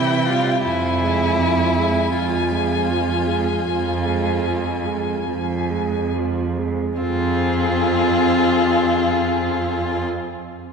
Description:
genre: classical, slow romantic movement for string quartet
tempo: 34-43 BPM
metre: 4/4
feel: rubato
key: F minor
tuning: A4 = 440 Hz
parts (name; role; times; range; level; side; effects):
- rich violin; melody; 0.0-10.0 s; Ab4 to Ab5; -26 LUFS; left 7 dB; none
- rich violin; second line; 0.0-10.1 s; E4 to F4; -22 LUFS; left 1 dB; none
- warm viola; accompaniment; 0.0-10.1 s; E3 to C4; -24 LUFS; right 1 dB; none
- clear cello; bass; 0.0-10.0 s; F2 to C3; -23 LUFS; right 4 dB; none
room: wet church reverb, RT60 3.0 s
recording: recorded in a church or concert hall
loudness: -18 LUFS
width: side -5 dB against mid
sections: 0.0-7.0 A section; 7.0-10.7 B section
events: slowing down 0.0-7.0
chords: 0.0 C; 0.6 Fm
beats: | 0.65 2.12 3.65 5.27 | 7.00 8.72

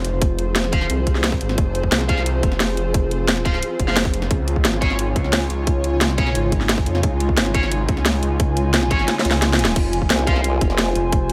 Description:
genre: dark technical drum and bass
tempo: 176 BPM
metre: 4/4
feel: straight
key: F minor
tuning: A4 = 437 Hz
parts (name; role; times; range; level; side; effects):
- swarming drone; sustained chords; 0.0-11.3 s; Db3 to Ab4; -31 LUFS; equal; built-in reverb, sidechain pumping
- detuned saw bass; bass; 0.0-11.3 s; F1 to F2; -24 LUFS; equal; chorus, overdrive, sidechain pumping
- drum and bass drum kit; drums; 0.0-11.3 s; crash cymbal, hi-hat, snare drum; -23 LUFS; equal; overdrive
- airy breathy pad; texture; 0.0-11.3 s; F4 to Ab5; -29 LUFS; equal; chorus, sidechain pumping
- electronic kick drum; drums; 0.2-11.2 s; none; -23 LUFS; equal; overdrive
- tight distorted guitar; stabs; 0.7-10.4 s; Db4 to F5; -30 LUFS; equal; distortion, dub echo
- formant-sweep wobble bass; bass; 10.1-10.9 s; F1 to C2; -24 LUFS; equal; chorus
room: digital ambience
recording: none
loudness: -19 LUFS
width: mono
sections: 0.0-11.3 A section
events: kick drops out 9.1-9.8; drum fill 9.1-9.8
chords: 0.0 Fm; 4.3 Db; 9.8 Fm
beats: | 0.22 0.56 0.90 1.24 | 1.58 1.92 2.26 2.60 | 2.94 3.28 3.62 3.97 | 4.31 4.65 4.99 5.33 | 5.67 6.01 6.35 6.69 | 7.03 7.38 7.72 8.06 | 8.40 8.74 9.08 9.42 | 9.76 10.10 10.44 10.78 | 11.12

